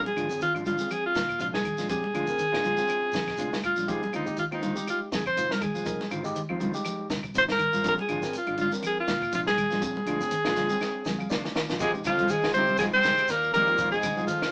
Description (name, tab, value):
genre	afrobeat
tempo	121 BPM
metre	4/4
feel	swing 55% on 16ths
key	F dorian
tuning	A4 = 441 Hz
part	overdriven tine electric piano	accompaniment	0.0-14.3 s	Ab3 to Ab5	-39 LUFS	equal	none
part	clean electric guitar	arpeggios	0.0-14.4 s	C3 to Ab3	-42 LUFS	equal	none
part	mellow electric guitar	stabs	0.0-14.3 s	Eb3 to F4	-37 LUFS	equal	none
part	fingered electric bass	bass	0.0-14.5 s	F1 to Bb2	-41 LUFS	equal	none
part	bright alto saxophone	melody	0.1-14.5 s	Eb4 to C5	-28 LUFS	equal	none
part	compact cocktail drum kit	drums	0.1-14.5 s	hi-hat, kick drum, snare drum	-37 LUFS	equal	none
part	congas	percussion	0.1-14.3 s	none	-38 LUFS	equal	none
part	claves	percussion	0.2-14.5 s	none	-44 LUFS	equal	none
part	shekere	percussion	0.2-14.5 s	none	-46 LUFS	equal	none
part	breathy tenor saxophone	second line	11.8-14.5 s	F3 to C4	-38 LUFS	equal	none
part	muted trombone section	second line	11.8-14.5 s	F2 to C3	-39 LUFS	equal	none
room	moderate studio ambience, RT60 0.5 s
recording	band playing live in one room, small speaker sound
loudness	-27 LUFS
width	mono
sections	0.0-11.8 A section; 11.8-14.5 B section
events	drum fill 10.8-11.8; tine electric piano fill 10.8-11.8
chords	0.0 Bb7; 3.9 Fm7; 7.8 Bb7; 11.8 Fm7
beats	0.42 0.91 1.41 | 1.90 2.40 2.89 3.39 | 3.88 4.38 4.87 5.37 | 5.87 6.36 6.86 7.35 | 7.85 8.34 8.84 9.33 | 9.83 10.32 10.82 11.31 | 11.81 12.30 12.80 13.29 | 13.79 14.28